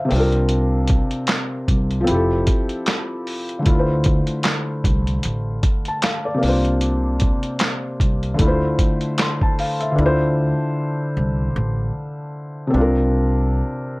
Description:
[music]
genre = lo-fi hip hop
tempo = 76 BPM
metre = 4/4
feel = swing 58% on 16ths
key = D minor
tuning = A4 = 440 Hz
[part]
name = felt-muted upright piano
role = accompaniment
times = 0.0-14.0 s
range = C3 to C6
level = -21 LUFS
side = left 1 dB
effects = low-pass filter
[part]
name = upright bass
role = bass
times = 0.1-13.6 s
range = F1 to D2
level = -21 LUFS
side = equal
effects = none
[part]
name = lo-fi sampler-style drum kit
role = drums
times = 0.1-10.0 s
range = handclaps, hi-hat, kick drum, snare drum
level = -20 LUFS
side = equal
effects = none
[sound]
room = little or no reverb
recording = dry, gritty hardware recording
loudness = -17 LUFS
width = side -24 dB against mid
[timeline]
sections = 0.0-10.0 A section; 10.0-14.0 B section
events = none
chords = 0.1 C7sus4; 2.1 Fmaj9; 3.7 Dm7; 6.4 C7sus4; 8.4 Dm9; 10.0 Dm7; 12.7 C7sus4

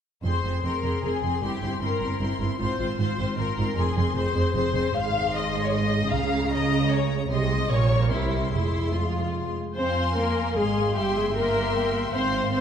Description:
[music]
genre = quick classical-period movement for string orchestra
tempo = 152 BPM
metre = 3/4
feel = straight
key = F minor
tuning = A4 = 440 Hz
[part]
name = rich studio violin section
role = melody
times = 0.2-12.6 s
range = Bb5 to Db6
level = -33 LUFS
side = left 6 dB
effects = none
[part]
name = rich studio violin section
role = second line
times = 0.2-12.6 s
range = E4 to C6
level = -29 LUFS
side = left 3 dB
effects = none
[part]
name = rich studio viola section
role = accompaniment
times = 0.2-12.6 s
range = G3 to C5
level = -29 LUFS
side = left 1 dB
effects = none
[part]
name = warm studio cello section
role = bass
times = 0.2-12.6 s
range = F2 to C4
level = -28 LUFS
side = right 2 dB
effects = none
[part]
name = warm studio double bass section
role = bass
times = 0.2-12.6 s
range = F1 to F2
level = -28 LUFS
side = right 2 dB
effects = none
[sound]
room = wet concert hall reverb, RT60 2.0 s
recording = minimal, uncompressed stereo recording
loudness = -22 LUFS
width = side -8 dB against mid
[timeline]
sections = 0.2-9.8 A section; 9.8-12.6 A section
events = none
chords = 0.2 Fm; 1.4 C7/G; 2.6 Fm/Ab; 3.8 Fm; 4.9 Ab; 6.1 Db6; 7.3 Ab/C; 7.7 Gdim/Bb; 8.1 C7; 8.5 Fm; 11.0 C7/G

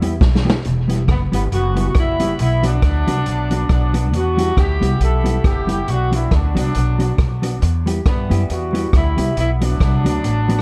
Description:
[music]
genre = ska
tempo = 138 BPM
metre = 4/4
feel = swing 56% on 8ths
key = E minor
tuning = A4 = 441 Hz
[part]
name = mellow horn section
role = melody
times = 0.0-10.6 s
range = E3 to A4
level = -25 LUFS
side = equal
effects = dub echo
[part]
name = mellow electric guitar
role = accompaniment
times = 0.0-10.6 s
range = F#3 to G4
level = -25 LUFS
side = equal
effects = spring reverb
[part]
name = upright bass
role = bass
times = 0.0-10.6 s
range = E1 to G2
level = -21 LUFS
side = equal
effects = none
[part]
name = vintage drum kit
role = drums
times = 0.0-10.6 s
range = hi-hat, kick drum, rim click, snare drum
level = -21 LUFS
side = equal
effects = none
[sound]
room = light reverb, small room ambience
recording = dark, warm production, vinyl crackle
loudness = -17 LUFS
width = mono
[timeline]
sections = 0.6-10.6 A section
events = drum fill 0.2-0.6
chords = 0.0 Em; 2.4 Bm; 4.1 Em; 5.9 Bm; 7.6 Em; 9.4 Bm

